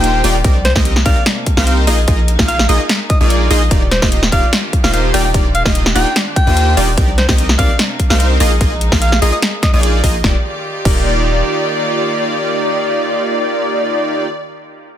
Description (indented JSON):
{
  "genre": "future bass",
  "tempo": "147 BPM",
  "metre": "4/4",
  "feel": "half-time",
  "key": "Eb major",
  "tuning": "A4 = 436 Hz",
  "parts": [
    { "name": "warm alto saxophone", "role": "melody", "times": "0.0-9.8 s", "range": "C5 to G5", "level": "-20 LUFS", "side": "left 1 dB", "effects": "sidechain pumping, dub echo" },
    { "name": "rich chamber string section", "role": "sustained chords", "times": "0.0-14.3 s", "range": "C3 to D5", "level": "-26 LUFS", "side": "right 1 dB", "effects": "sidechain pumping" },
    { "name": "airy dreamy lead", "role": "arpeggios", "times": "0.0-14.3 s", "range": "C5 to F5", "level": "-23 LUFS", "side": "equal", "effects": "chorus, sidechain pumping" },
    { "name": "supersaw stab", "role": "riff", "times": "0.0-14.3 s", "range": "Bb3 to F5", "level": "-19 LUFS", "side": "equal", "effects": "sidechain pumping, dub echo" },
    { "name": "long sustained 808-style bass", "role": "bass", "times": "0.0-11.4 s", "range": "Eb1 to Eb2", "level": "-15 LUFS", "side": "equal", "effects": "sidechain pumping" },
    { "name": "big-room dance drum kit", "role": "drums", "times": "0.0-11.0 s", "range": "crash cymbal, hi-hat, snare drum", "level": "-18 LUFS", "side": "equal", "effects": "studio reverb" },
    { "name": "electronic kick drum", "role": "drums", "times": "0.4-11.0 s", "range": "none", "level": "-15 LUFS", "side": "equal", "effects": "studio reverb" }
  ],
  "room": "little or no reverb",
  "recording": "dense, heavily limited modern master",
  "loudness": "-11 LUFS",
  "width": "side -11 dB against mid",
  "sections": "0.0-10.2 A section; 10.2-13.5 B section",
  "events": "drop 0.0-10.2",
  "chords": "0.4 Cm9; 1.9 Bb7sus4; 3.7 Ebmaj9; 7.0 Cm9; 8.4 Bb7sus4; 10.2 Ebmaj9",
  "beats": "0.04 | 0.45 0.85 1.26 1.67 | 2.08 2.49 2.89 3.30 | 3.71 4.12 4.53 4.93 | 5.34 5.75 6.16 6.57 | 6.98 7.38 7.79 8.20 | 8.61 9.02 9.43 9.83 | 10.24 10.65 11.06 11.47 | 11.87 12.28 12.69 13.10"
}